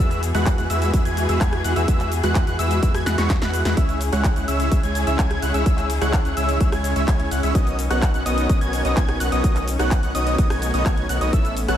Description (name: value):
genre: EDM, festival progressive house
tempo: 127 BPM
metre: 4/4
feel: straight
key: unclear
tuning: A4 = 440 Hz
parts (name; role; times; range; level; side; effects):
- warm studio string section; sustained chords; 0.0-11.8 s; C#3 to G#4; -29 LUFS; left 4 dB; sidechain pumping
- wide unison lead; arpeggios; 0.0-11.8 s; C#6 to G#6; -28 LUFS; equal; sidechain pumping, dub echo
- dense compressed supersaw; riff; 0.0-11.8 s; G#3 to G#5; -25 LUFS; right 1 dB; sidechain pumping, dub echo
- saturated sub bass; bass; 0.0-11.8 s; A1 to E2; -24 LUFS; equal; sidechain pumping
- big-room dance drum kit; drums; 0.0-11.8 s; cabasa, handclaps, hi-hat, rim click, snare drum; -29 LUFS; equal; studio reverb
- electronic kick drum; drums; 0.5-11.4 s; none; -20 LUFS; equal; studio reverb
room: digital ambience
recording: none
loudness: -18 LUFS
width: side -10 dB against mid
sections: 0.0-11.8 A section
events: drum fill 3.1-3.8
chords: 0.0 Eadd9; 3.8 C#m; 7.6 Badd9